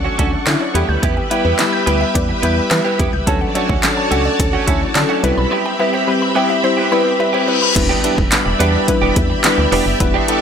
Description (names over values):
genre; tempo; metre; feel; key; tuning
dance-pop; 107 BPM; 4/4; straight; unclear; A4 = 440 Hz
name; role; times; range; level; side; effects
soft round pluck; accompaniment; 0.0-10.4 s; F#3 to D5; -19 LUFS; left 3 dB; chorus, sidechain pumping
string machine, violas; sustained chords; 0.0-10.4 s; C4 to C#6; -20 LUFS; equal; ensemble chorus, sidechain pumping
direct-recorded clean electric guitar; riff; 0.0-10.4 s; A3 to G4; -22 LUFS; right 9 dB; lush chorus
organ-like FM bass; bass; 0.0-10.2 s; E1 to E3; -20 LUFS; equal; sidechain pumping
mallet-like synth pluck; arpeggios; 0.2-7.7 s; G4 to G6; -24 LUFS; left 2 dB; chorus, sidechain pumping, ping-pong delay
deep house drum kit; drums; 0.2-10.4 s; crash cymbal, handclaps, hi-hat, kick drum, snare drum; -18 LUFS; equal; overdrive
reverse cymbal and impact; sound effects; 7.1-10.0 s; none; -22 LUFS; left 4 dB; none
room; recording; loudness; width
light reverb; none; -13 LUFS; side -7 dB against mid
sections
0.0-7.8 A section; 7.8-10.4 B section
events
reverse cymbal 7.1-7.8; impact 7.8-10.0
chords
0.0 Dmaj7; 0.8 Em; 3.3 Dmaj7; 5.2 Cmaj7; 7.8 Em7